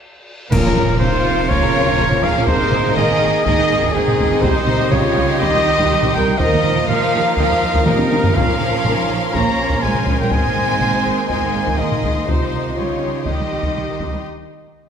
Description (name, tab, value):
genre	cinematic, epic orchestral film score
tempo	122 BPM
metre	4/4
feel	straight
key	Bb dorian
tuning	A4 = 438 Hz
part	warm symphonic violin section	melody	0.5-14.2 s	Ab4 to Bb5	-25 LUFS	left 4 dB	none
part	warm symphonic violin section	second line	0.5-14.2 s	C4 to Db5	-25 LUFS	left 3 dB	none
part	clear symphonic viola section	accompaniment	0.5-14.2 s	C3 to Bb4	-27 LUFS	right 1 dB	none
part	clear symphonic string section	sustained chords	0.5-14.2 s	Bb3 to C6	-26 LUFS	left 1 dB	none
part	clear trombone section	sustained chords	0.5-14.2 s	Eb3 to Db4	-27 LUFS	right 5 dB	none
part	mellow French horn section	sustained chords	0.5-14.2 s	C4 to C5	-27 LUFS	left 3 dB	none
part	dark trumpet	stabs	0.5-14.2 s	Ab4 to Bb5	-21 LUFS	right 1 dB	none
part	rich chamber cello section	bass	0.5-14.2 s	Ab2 to Bb3	-24 LUFS	right 4 dB	none
part	rich symphonic double bass section	bass	0.5-14.2 s	Ab1 to Eb2	-25 LUFS	right 4 dB	none
part	taiko ensemble	drums	0.5-14.2 s	none	-22 LUFS	left 1 dB	none
part	clash cymbals and concert bass drum	percussion	0.5-1.5 s	none	-26 LUFS	equal	none
part	timpani	percussion	0.5-1.2, 8.4-9.0 s	Bb2	-25 LUFS	equal	none
part	impact	sound effects	0.5-2.5 s	none	barely audible	none	none
room	moderate scoring stage reverb, RT60 1.5 s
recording	none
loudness	-14 LUFS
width	side -7 dB against mid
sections	0.5-14.9 A section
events	break 0.0-0.5, 14.2-14.9; drum fill 0.0-0.5, 7.9-8.3; band accent 0.5-1.0; impact 0.5-2.5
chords	0.0 N.C.; 0.5 Bbmadd9; 2.5 Abadd9; 4.4 Cm; 6.4 Ebsus2; 8.3 Bbmadd9; 10.3 Abadd9; 12.3 Cm; 14.2 N.C.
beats	0.02 | 0.51 1.00 1.49 1.98 | 2.47 2.96 3.45 3.94 | 4.43 4.92 5.41 5.90 | 6.39 6.88 7.37 7.86 | 8.35 8.84 9.33 9.82 | 10.31 10.80 11.29 11.78 | 12.27 12.76 13.25 13.74 | 14.23